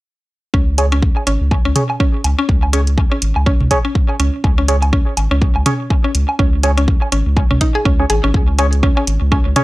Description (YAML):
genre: minimal techno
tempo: 123 BPM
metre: 4/4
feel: swing 58% on 16ths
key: unclear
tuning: A4 = 442 Hz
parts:
  - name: mallet-like synth pluck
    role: riff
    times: 0.5-9.6 s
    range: C#4 to G#4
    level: -21 LUFS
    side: equal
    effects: chorus, sidechain pumping, tape echo
  - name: saturated sub bass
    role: bass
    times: 0.5-9.5 s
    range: G#1 to C#2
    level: -16 LUFS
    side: equal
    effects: sidechain pumping
  - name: electronic kick drum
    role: drums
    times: 0.5-9.4 s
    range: none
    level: -15 LUFS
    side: equal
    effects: none
  - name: percussive organ stab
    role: stabs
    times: 0.8-9.6 s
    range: C#4 to C#5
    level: -21 LUFS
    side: right 1 dB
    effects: analog chorus, tape echo
  - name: electronic hi-hat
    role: drums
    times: 0.8-9.6 s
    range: none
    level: -22 LUFS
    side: equal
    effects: none
  - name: electronic woodblock and toms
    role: percussion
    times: 0.8-9.6 s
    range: none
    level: -22 LUFS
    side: right 1 dB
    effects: overdrive, tape echo
room: little or no reverb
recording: dry, gritty hardware recording, transformer saturation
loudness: -13 LUFS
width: side -19 dB against mid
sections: 0.5-9.6 A section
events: none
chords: 0.5 C#5